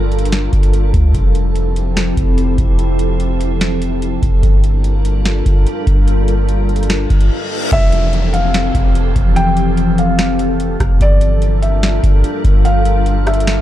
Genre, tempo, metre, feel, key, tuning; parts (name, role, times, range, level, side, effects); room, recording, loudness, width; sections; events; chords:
hip hop, atmospheric cloud-rap; 146 BPM; 4/4; half-time; F major; A4 = 440 Hz
glassy FM pad; sustained chords; 0.0-13.6 s; E3 to Bb4; -18 LUFS; left 1 dB; ensemble chorus, built-in reverb, sidechain pumping
soft 808-style bass; bass; 0.0-13.6 s; F1 to D2; -15 LUFS; equal
booming analog drum machine; drums; 0.1-13.6 s; hi-hat, kick drum, rim click, snare drum; -15 LUFS; equal; vintage 12-bit sampler grit
reverse cymbal and downlifter; sound effects; 7.1-11.0 s; -26 LUFS; left 2 dB
felt-muted upright piano; melody; 7.7-13.6 s; D5 to G5; -20 LUFS; equal; digital delay
little or no reverb; dark, warm production; -12 LUFS; side -13 dB against mid
0.0-7.7 A section; 7.7-13.6 B section
reverse cymbal 7.1-7.7; break 7.3-7.7
0.0 Gm7; 1.1 Fmaj7; 4.4 Gm7; 7.7 Fmaj7; 11.0 Gm7